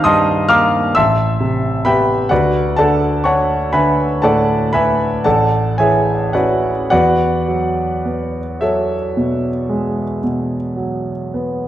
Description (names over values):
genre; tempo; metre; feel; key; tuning
classical, impressionist solo piano; 34-45 BPM (dotted quarters); 9/8; rubato; E mixolydian; A4 = 440 Hz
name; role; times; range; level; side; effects
clear concert grand piano; solo; 0.0-11.7 s; A1 to G6; -14 LUFS; equal; none
room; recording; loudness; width
moderate recital hall reverb, RT60 1.4 s; dark, warm production; -14 LUFS; side -12 dB against mid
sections
0.0-11.7 A section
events
none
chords
0.0 Cm9; 0.9 Am9; 2.3 Dadd9; 5.2 Amaj7; 6.9 Eadd9